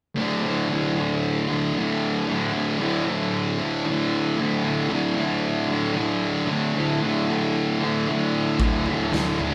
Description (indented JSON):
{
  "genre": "garage rock duo or trio",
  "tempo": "114 BPM",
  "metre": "4/4",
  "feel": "straight",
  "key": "unclear",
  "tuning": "A4 = 440 Hz",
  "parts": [
    { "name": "thick fuzz guitar", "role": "riff", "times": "0.2-9.5 s", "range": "D2 to D3", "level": "-24 LUFS", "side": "equal", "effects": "distortion" },
    { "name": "raw garage drum kit", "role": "drums", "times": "8.6-9.5 s", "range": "kick drum, snare drum, toms", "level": "-28 LUFS", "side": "equal", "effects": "none" }
  ],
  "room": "light reverb",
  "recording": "band playing live in one room",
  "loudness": "-24 LUFS",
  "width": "mono",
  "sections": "0.2-9.5 A section",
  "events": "none",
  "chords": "0.2 D5",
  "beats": "| 0.16 0.69 1.22 1.74 | 2.27 2.80 3.33 3.85 | 4.38 4.91 5.43 5.96 | 6.49 7.01 7.54 8.07 | 8.59 9.12"
}